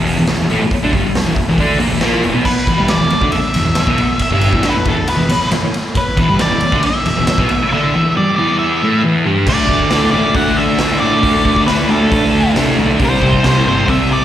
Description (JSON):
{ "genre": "garage rock duo or trio", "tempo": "137 BPM", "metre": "4/4", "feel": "straight", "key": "E minor", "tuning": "A4 = 440 Hz", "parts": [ { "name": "thick fuzz guitar", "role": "riff", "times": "0.0-14.2 s", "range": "E2 to D4", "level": "-14 LUFS", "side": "equal", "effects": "distortion, slapback echo" }, { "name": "fuzz picked electric bass", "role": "bass", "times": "0.0-14.2 s", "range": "E1 to D3", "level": "-20 LUFS", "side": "equal", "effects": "overdrive" }, { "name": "raw garage drum kit", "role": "drums", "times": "0.1-14.0 s", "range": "crash cymbal, hi-hat, kick drum, ride cymbal, snare drum", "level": "-19 LUFS", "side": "equal", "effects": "none" }, { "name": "octave-fuzz lead guitar", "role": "melody", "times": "2.5-14.2 s", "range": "A4 to F#5", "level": "-18 LUFS", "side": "equal", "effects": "distortion, slapback echo" } ], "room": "light reverb", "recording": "live gig heard through the venue's PA, recital hall reverb", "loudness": "-12 LUFS", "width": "side -11 dB against mid", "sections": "0.0-2.5 A section; 2.5-9.5 B section; 9.5-14.2 C section", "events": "none", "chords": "0.0 E5; 2.5 Em; 9.5 D5; 13.0 C5" }